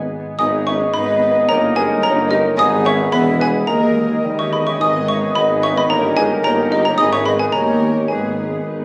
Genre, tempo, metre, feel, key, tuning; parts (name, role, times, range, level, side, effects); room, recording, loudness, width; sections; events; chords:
cinematic, playful, whimsical film cue; 109 BPM; 2/4; straight; G# minor; A4 = 440 Hz
clear clarinet; second line; 0.0-8.8 s; B3 to B4; -29 LUFS; equal
mellow hollow silver concert flute; second line; 0.0-8.7 s; G4 to G#5; -25 LUFS; equal
mellow bassoon; accompaniment; 0.0-8.8 s; D#3 to D#4; -27 LUFS; equal
concert harp; arpeggios; 0.0-8.8 s; G2 to C#5; -30 LUFS; equal
muted studio double bass section; bass; 0.0-8.8 s; E1 to D#2; -30 LUFS; equal
warm tuba; bass; 0.0-8.8 s; E1 to D#2; -26 LUFS; equal
muted studio viola section; accompaniment; 0.1-8.8 s; D#3 to G4; -31 LUFS; equal
muted studio violin section; melody; 0.4-8.8 s; D#4 to B4; -37 LUFS; equal
xylophone with wooden mallets; melody; 0.4-8.6 s; D#5 to D#6; -22 LUFS; equal
dark cor anglais; second line; 0.4-8.8 s; B4 to D#5; -29 LUFS; equal
muted studio violin section; second line; 0.4-8.6 s; D#4 to D#5; -31 LUFS; equal
mellow French horn section; sustained chords; 0.4-8.7 s; D#3 to D#4; -28 LUFS; equal
muted studio cello section; bass; 0.4-8.8 s; D#2 to G#2; -34 LUFS; equal
wet scoring stage reverb, RT60 1.8 s; recorded on a phone in the room, club reverb, compression; -17 LUFS; mono
0.4-8.8 A section
0.4 G#m; 1.5 D#7/G; 2.6 G#m; 3.1 E; 3.7 D#sus4; 4.2 D#; 4.8 G#m; 5.9 D#7/G; 7.0 G#m; 7.5 D#7; 8.1 G#m